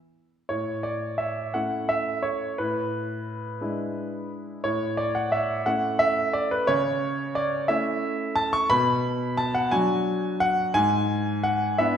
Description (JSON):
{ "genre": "classical-period piano sonatina", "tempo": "58 BPM (dotted quarters)", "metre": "6/8", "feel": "straight", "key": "A major", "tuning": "A4 = 441 Hz", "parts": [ { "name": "clear grand piano", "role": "solo", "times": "0.5-12.0 s", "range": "G#2 to C#6", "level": "-23 LUFS", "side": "equal", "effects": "none" } ], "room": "wet recital hall reverb, RT60 1.7 s", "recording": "heard from further back in the room", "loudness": "-23 LUFS", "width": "side -8 dB against mid", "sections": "0.5-12.0 A section", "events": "none", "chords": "0.0 N.C.; 0.5 A; 2.6 E7/A; 4.6 A; 6.7 A/C#; 8.7 Bm; 10.7 E7/G#" }